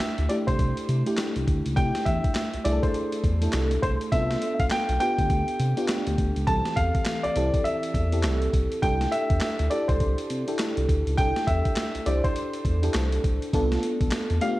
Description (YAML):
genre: R&B, new jack swing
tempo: 102 BPM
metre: 4/4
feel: swing 61% on 16ths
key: C major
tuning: A4 = 440 Hz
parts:
  - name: warm grand piano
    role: melody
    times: 0.0-14.6 s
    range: C5 to A5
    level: -29 LUFS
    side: equal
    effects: slapback echo
  - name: FM electric piano with soft pad layer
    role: accompaniment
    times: 0.0-14.6 s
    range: E3 to C5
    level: -28 LUFS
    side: equal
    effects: chorus
  - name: boom bap sampler-style drum kit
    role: drums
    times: 0.0-14.6 s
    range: handclaps, hi-hat, kick drum, snare drum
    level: -28 LUFS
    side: equal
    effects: none
  - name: smooth synth bass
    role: bass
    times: 0.2-14.4 s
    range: B1 to C3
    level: -26 LUFS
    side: equal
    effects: none
room: moderate spring reverb, RT60 2.4 s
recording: dark, warm production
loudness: -22 LUFS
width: side -17 dB against mid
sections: 0.0-14.6 A section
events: none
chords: 0.0 C6; 4.1 G7; 6.5 C6; 13.5 G7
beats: 0.00 0.59 1.18 | 1.77 2.36 2.94 3.53 | 4.12 4.71 5.30 5.88 | 6.47 7.06 7.65 8.24 | 8.83 9.41 10.00 10.59 | 11.18 11.77 12.36 12.94 | 13.53 14.12